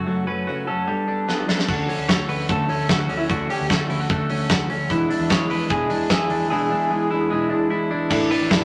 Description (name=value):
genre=jangly indie pop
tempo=149 BPM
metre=4/4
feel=straight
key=unclear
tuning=A4 = 440 Hz
part: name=electric guitar through a small old amp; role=melody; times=0.0-8.6 s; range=E4 to C#5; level=-28 LUFS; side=equal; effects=spring reverb
part: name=fingerpicked plugged-in steel-string acoustic guitar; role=accompaniment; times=0.0-8.6 s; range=E2 to A4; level=-28 LUFS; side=equal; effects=none
part: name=twelve-string electric guitar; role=arpeggios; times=0.0-8.6 s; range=E2 to F#4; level=-28 LUFS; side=equal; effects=none
part: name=vintage muted picked electric bass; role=bass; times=0.0-8.6 s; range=A1 to E2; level=-31 LUFS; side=equal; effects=none
part: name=big rock drum kit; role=drums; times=1.3-8.6 s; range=crash cymbal, hi-hat, kick drum, snare drum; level=-25 LUFS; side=equal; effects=none
part: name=bright upright piano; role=accompaniment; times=8.1-8.6 s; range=D4 to A4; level=-28 LUFS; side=equal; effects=none
room=wet studio reverb, RT60 0.8 s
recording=none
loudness=-22 LUFS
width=mono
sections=0.0-1.7 A section; 1.7-8.1 B section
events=break 0.1-1.7; drum fill 1.3-1.7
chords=0.0 F#m; 0.9 Gadd9; 1.7 Dmaj7; 4.9 E7; 8.1 Asus4